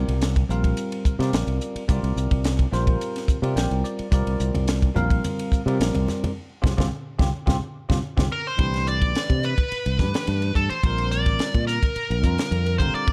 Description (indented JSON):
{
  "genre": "electric jazz fusion",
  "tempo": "107 BPM",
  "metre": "4/4",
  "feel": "straight",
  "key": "C major from 8.6 s",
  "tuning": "A4 = 440 Hz",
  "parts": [
    { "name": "bell-like tine electric piano", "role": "accompaniment", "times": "0.0-13.1 s", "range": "D3 to G5", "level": "-32 LUFS", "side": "equal", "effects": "lush chorus" },
    { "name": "fretless electric bass", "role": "bass", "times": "0.0-13.1 s", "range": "Ab1 to C3", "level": "-26 LUFS", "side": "equal", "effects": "none" },
    { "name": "crisp fusion drum kit", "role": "drums", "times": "0.1-13.1 s", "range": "hi-hat, kick drum, ride cymbal, snare drum", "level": "-27 LUFS", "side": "equal", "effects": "none" },
    { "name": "congas", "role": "percussion", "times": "4.5-8.3 s", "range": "none", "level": "-32 LUFS", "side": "equal", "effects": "none" },
    { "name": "smooth overdriven lead guitar", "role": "melody", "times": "8.3-13.1 s", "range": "A4 to D5", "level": "-28 LUFS", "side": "equal", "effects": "slapback echo" }
  ],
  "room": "light reverb",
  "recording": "dark, warm production",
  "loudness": "-23 LUFS",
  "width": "mono",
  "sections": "0.0-8.6 A section; 8.6-13.1 B section",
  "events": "tine electric piano fill 3.3-4.1, 7.5-8.6; band accent 6.4-8.6; drum fill 8.0-8.6",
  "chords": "0.0 C9sus4; 8.6 Cmaj9; 10.8 Bbadd9"
}